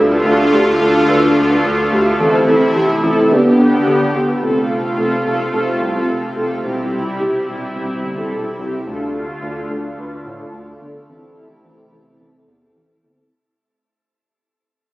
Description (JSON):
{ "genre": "pop", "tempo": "108 BPM", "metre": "4/4", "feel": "straight", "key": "unclear", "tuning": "A4 = 436 Hz", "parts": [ { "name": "mellow synth brass", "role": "accompaniment", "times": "0.0-13.2 s", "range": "B3 to B4", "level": "-17 LUFS", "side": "equal", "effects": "chorus, low-pass filter, shimmer reverb" }, { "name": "lush unison pad", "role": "sustained chords", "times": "0.0-13.3 s", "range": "C3 to G4", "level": "-19 LUFS", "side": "equal", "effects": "chorus, low-pass filter, shimmer reverb" }, { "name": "worn celesta", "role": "arpeggios", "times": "0.0-4.4 s", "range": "G4 to C5", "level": "-19 LUFS", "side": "equal", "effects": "digital delay, shimmer reverb" }, { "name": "round analog bass", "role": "bass", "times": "0.0-13.2 s", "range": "E1 to A2", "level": "-26 LUFS", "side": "equal", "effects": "none" } ], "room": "moderate plate reverb, RT60 2.5 s", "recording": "recorded on a phone in the room, studio reverb", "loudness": "-14 LUFS", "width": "side -18 dB against mid", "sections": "0.0-4.4 A section; 4.4-13.3 B section", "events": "fade-out 4.4-13.3; filter sweep 4.4-13.3", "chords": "0.0 Dm; 2.2 Am; 3.3 G; 4.4 F; 6.6 C/E; 8.9 Dm; 11.1 Am" }